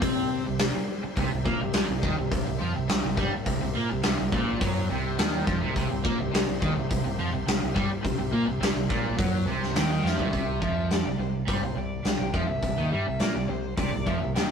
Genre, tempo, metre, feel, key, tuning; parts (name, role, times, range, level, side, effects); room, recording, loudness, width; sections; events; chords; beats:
classic rock; 105 BPM; 4/4; straight; C major; A4 = 440 Hz
bright tonewheel organ; sustained chords; 0.0-10.3 s; E4 to G5; -42 LUFS; left 2 dB
overdriven semi-hollow guitar; riff; 0.0-14.5 s; Bb2 to C4; -30 LUFS; right 3 dB; phaser
tight distorted guitar; riff; 0.0-14.5 s; Bb2 to C4; -35 LUFS; left 4 dB; distortion
modern bright fingered electric bass; bass; 0.0-14.5 s; Bb1 to C3; -32 LUFS; left 1 dB
big rock drum kit; drums; 0.0-14.5 s; hi-hat, kick drum, snare drum, toms; -28 LUFS; equal
warm fiddle; melody; 9.8-14.5 s; C5 to G5; -34 LUFS; left 2 dB
moderate stone room reverb, RT60 1.1 s; rough rehearsal-room recording, tube saturation; -24 LUFS; side -6 dB against mid
0.0-10.3 A section; 10.3-14.5 B section
drum fill 10.0
0.0 C
0.03 0.60 | 1.17 1.75 2.32 2.90 | 3.47 4.04 4.62 5.19 | 5.76 6.33 6.90 7.47 | 8.04 8.62 9.19 9.76 | 10.33 10.90 11.48 12.05 | 12.63 13.20 13.78 14.35